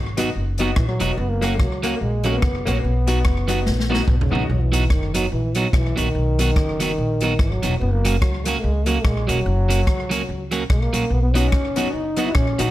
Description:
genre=ska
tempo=145 BPM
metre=4/4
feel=swing 57% on 8ths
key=B major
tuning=A4 = 440 Hz
part: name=upright bass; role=bass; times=0.0-12.7 s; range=E1 to C#2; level=-22 LUFS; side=equal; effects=none
part: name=electric guitar at the edge of break-up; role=accompaniment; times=0.2-12.7 s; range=F#3 to F#4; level=-25 LUFS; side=right 4 dB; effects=plate reverb
part: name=honky-tonk upright piano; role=stabs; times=0.2-4.4, 11.3-12.7 s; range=A#3 to F#4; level=-28 LUFS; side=left 5 dB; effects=slapback echo, plate reverb
part: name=swinging big-band drum kit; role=drums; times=0.2-12.7 s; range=hi-hat, kick drum, rim click, snare drum, toms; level=-23 LUFS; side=equal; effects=none
part: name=dark trombone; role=melody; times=0.8-12.7 s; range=B2 to E4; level=-25 LUFS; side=equal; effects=slapback echo, plate reverb
room=light reverb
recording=none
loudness=-18 LUFS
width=side -15 dB against mid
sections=0.0-4.5 A section; 4.5-12.7 A section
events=drum fill 3.7-4.5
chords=0.0 B; 1.2 F#; 2.8 B; 7.8 F#; 11.1 B

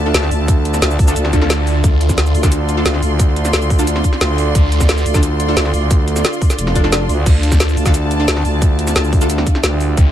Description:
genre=dark technical drum and bass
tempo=177 BPM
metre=4/4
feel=straight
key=D minor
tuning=A4 = 440 Hz
part: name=deep dark ambient pad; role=sustained chords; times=0.0-10.1 s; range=D4 to E5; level=-24 LUFS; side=right 2 dB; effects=chorus, built-in reverb, sidechain pumping
part: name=growling FM bass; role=bass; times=0.0-10.0 s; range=F1 to D2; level=-17 LUFS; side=equal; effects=none
part: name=warm studio string section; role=texture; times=0.0-10.1 s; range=F4 to C6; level=-24 LUFS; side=equal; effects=sidechain pumping
part: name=orchestra-hit-like synth stab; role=stabs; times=0.1-9.3 s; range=D4 to A4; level=-24 LUFS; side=equal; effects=built-in reverb, ping-pong delay
part: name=drum and bass drum kit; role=drums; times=0.1-10.0 s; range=crash cymbal, hi-hat, shaker, snare drum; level=-19 LUFS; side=equal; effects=none
part: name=electronic kick drum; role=drums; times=0.5-10.0 s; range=none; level=-13 LUFS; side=equal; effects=none
part: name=phased detuned saw bass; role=bass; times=1.3-2.3, 4.5-5.0, 7.3-7.8, 10.0-10.1 s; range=D2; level=-15 LUFS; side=equal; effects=phaser, sidechain pumping
part: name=swell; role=sound effects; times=6.7-7.3 s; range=none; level=-27 LUFS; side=left 3 dB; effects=none
room=digital ambience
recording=none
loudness=-12 LUFS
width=side -11 dB against mid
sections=0.0-10.1 A section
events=swell 6.7-7.3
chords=0.0 Dm

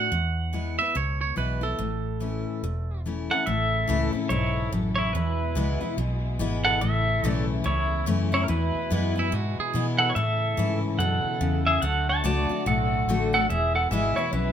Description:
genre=honky-tonk and classic country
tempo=144 BPM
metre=4/4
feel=swing 61% on 8ths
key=A major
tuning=A4 = 439 Hz
part: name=twangy electric guitar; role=second line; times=0.0-3.0, 9.2-9.9 s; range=E4 to F#5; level=-29 LUFS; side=right 7 dB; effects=none
part: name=picked steel-string acoustic guitar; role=accompaniment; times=0.0-14.5 s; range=E2 to F#4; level=-29 LUFS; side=left 5 dB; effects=none
part: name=vintage muted fingered electric bass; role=bass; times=0.1-14.5 s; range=E1 to B2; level=-27 LUFS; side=equal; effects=none
part: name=pedal steel guitar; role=melody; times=3.3-14.5 s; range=E4 to A5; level=-25 LUFS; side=right 2 dB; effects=none
part: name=dark chamber string section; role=sustained chords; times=3.5-14.5 s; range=B2 to A4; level=-35 LUFS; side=left 1 dB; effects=none
room=moderate studio reverb, RT60 0.7 s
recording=minimal, uncompressed stereo recording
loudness=-23 LUFS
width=side -9 dB against mid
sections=0.0-3.5 A section; 3.5-14.5 B section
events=clean electric guitar solo 0.0-3.5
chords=0.1 E; 1.8 A; 5.1 E; 6.8 A; 8.5 E; 10.2 A; 11.8 D; 13.5 E

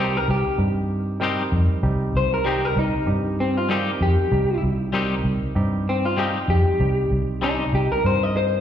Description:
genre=blues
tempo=97 BPM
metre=4/4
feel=swing 55% on 16ths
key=C minor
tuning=A4 = 440 Hz
part: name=electric guitar through a small old amp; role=melody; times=0.0-8.6 s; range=C4 to Eb5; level=-24 LUFS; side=left 2 dB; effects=spring reverb, slapback echo
part: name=barky tine electric piano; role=accompaniment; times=0.0-8.6 s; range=G3 to Bb4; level=-29 LUFS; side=right 4 dB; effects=slapback echo
part: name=twangy electric guitar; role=stabs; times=0.0-7.6 s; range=G3 to G4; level=-27 LUFS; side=left 5 dB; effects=tremolo, slapback echo
part: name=vintage muted fingered electric bass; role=bass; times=0.0-8.6 s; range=C2 to G2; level=-22 LUFS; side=equal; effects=none
room=little or no reverb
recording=live gig heard through the venue's PA, recital hall reverb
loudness=-19 LUFS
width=side -9 dB against mid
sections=0.0-8.6 A section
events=clean electric guitar solo 0.0-8.6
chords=0.0 Cm

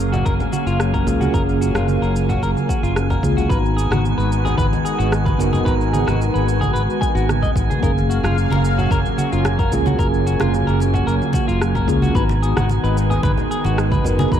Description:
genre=sunset chillout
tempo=111 BPM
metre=4/4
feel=straight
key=unclear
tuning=A4 = 440 Hz
part: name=mellow tine electric piano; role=accompaniment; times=0.0-14.4 s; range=A#3 to A#5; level=-24 LUFS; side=moving between left 5 dB and right 6 dB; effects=medium stereo tremolo, auto-pan, vintage 12-bit sampler grit, low-pass filter, ping-pong delay
part: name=lush unison pad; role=sustained chords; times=0.0-14.4 s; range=C#3 to E#5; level=-24 LUFS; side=equal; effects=chorus, phaser
part: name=modern bright fingered electric bass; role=bass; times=0.0-14.4 s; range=F#1 to C#2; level=-20 LUFS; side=equal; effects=none
part: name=electronic cabasa, congas and rim click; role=drums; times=0.0-14.4 s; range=none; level=-26 LUFS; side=right 2 dB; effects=overdrive
part: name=drifting glass-harmonics texture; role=texture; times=0.0-14.4 s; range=G#5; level=-30 LUFS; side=right 6 dB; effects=chorus, built-in reverb
part: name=clean electric guitar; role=arpeggios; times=0.1-14.4 s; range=E#4 to G#5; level=-26 LUFS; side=left 3 dB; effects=ping-pong delay
part: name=congas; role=percussion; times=0.1-14.3 s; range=none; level=-28 LUFS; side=left 2 dB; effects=none
part: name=electronic kick drum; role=drums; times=0.3-14.4 s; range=none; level=-23 LUFS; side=equal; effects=overdrive
room=light reverb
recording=dark, warm production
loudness=-16 LUFS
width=side -9 dB against mid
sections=0.0-14.4 A section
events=filter sweep on tine electric piano 0.0-14.4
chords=0.0 F#maj7; 3.5 G#m7; 7.8 F#maj7; 12.2 G#m7

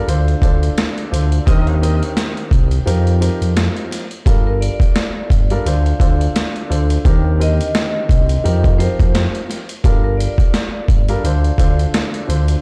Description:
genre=hip hop, boom-bap hip-hop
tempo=86 BPM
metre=4/4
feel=swing 57% on 16ths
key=G minor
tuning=A4 = 440 Hz
part: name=vibraphone with hard mallets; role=melody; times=0.0-12.6 s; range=Bb4 to Eb5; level=-29 LUFS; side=equal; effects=high-pass filter, low-pass filter, delay
part: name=warm upright piano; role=accompaniment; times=0.0-12.6 s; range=D3 to C5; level=-26 LUFS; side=equal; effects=cassette tape, high-pass filter, low-pass filter
part: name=growling FM bass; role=bass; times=0.1-12.6 s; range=G1 to F2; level=-18 LUFS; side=equal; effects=none
part: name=boom bap sampler-style drum kit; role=drums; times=0.1-12.6 s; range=hi-hat, kick drum, snare drum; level=-19 LUFS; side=equal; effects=none
part: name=warm trumpet section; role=stabs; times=1.5-1.8 s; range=C4 to Eb5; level=-33 LUFS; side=equal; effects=high-pass filter, low-pass filter, delay
room=little or no reverb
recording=played on a big sound system in a bare room, stone room reverb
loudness=-16 LUFS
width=mono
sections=0.0-4.3 A section; 4.3-12.6 A section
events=kick muted 2.9-4.3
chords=0.1 Dm7; 1.5 Cm7/Eb; 2.9 F7sus4; 4.3 Gm7; 5.7 Dm7; 7.1 Cm7/Eb; 8.4 F7sus4; 9.8 Gm7; 11.2 Dm7

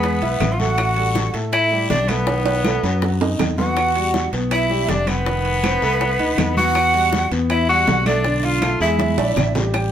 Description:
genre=Afro-Cuban jazz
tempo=161 BPM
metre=4/4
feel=straight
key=E minor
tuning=A4 = 441 Hz
part: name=clear tenor saxophone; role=melody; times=0.0-9.5 s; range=B3 to F#4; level=-21 LUFS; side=left 3 dB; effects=none
part: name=breathy bright jazz flute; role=second line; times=0.0-9.5 s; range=B4 to F#5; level=-24 LUFS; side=right 4 dB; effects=none
part: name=clear concert grand piano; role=accompaniment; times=0.0-9.9 s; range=D3 to G5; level=-24 LUFS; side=right 1 dB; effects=none
part: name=fingered electric bass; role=bass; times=0.0-9.9 s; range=F1 to A2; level=-23 LUFS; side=equal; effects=none
part: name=bongos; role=percussion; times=0.0-9.9 s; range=none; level=-28 LUFS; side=left 4 dB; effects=none
part: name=congas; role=percussion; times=0.0-9.9 s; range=none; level=-28 LUFS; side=right 1 dB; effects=none
part: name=guiro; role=percussion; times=0.0-9.9 s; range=none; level=-33 LUFS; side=left 4 dB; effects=none
part: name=timbales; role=percussion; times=0.0-9.9 s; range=none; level=-27 LUFS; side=right 5 dB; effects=none
part: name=claves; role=percussion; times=0.4-9.9 s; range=none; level=-33 LUFS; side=right 1 dB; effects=none
room=moderate studio reverb, RT60 0.9 s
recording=band playing live in one room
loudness=-16 LUFS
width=side -9 dB against mid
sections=0.0-9.7 A section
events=drum fill 2.3-3.8, 9.0-9.7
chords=0.0 E; 0.8 Asus2; 2.3 B7; 3.8 Emadd9; 5.3 F7#11; 6.8 Emadd9; 8.2 Bm7b5; 9.0 Gm69

